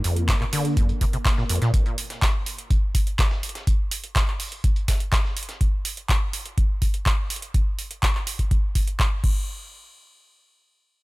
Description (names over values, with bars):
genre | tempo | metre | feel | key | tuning
acid house | 124 BPM | 4/4 | straight | unclear | A4 = 440 Hz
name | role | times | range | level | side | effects
lush unison pad | sustained chords | 0.0-1.7 s | Bb3 | -37 LUFS | right 2 dB | chorus, sidechain pumping
acid bass, saw | riff | 0.0-1.7 s | F2 to D3 | -24 LUFS | equal | overdrive, wide subtle chorus, sidechain pumping, digital delay
booming analog drum machine | drums | 0.0-9.3 s | crash cymbal, handclaps, hi-hat | -28 LUFS | right 1 dB | overdrive
dusty soul sampler-style drum kit | drums | 0.0-5.6 s | hi-hat, snare drum | -35 LUFS | equal | high-pass filter on hats, high-pass filter on snare, high-pass filter on room
electronic kick drum | drums | 0.3-9.3 s | none | -22 LUFS | equal | overdrive
room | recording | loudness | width
little or no reverb | none | -21 LUFS | side -21 dB against mid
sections
0.0-9.5 A section; 9.5-11.0 B section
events
filter sweep on acid bass 0.0-1.7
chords
none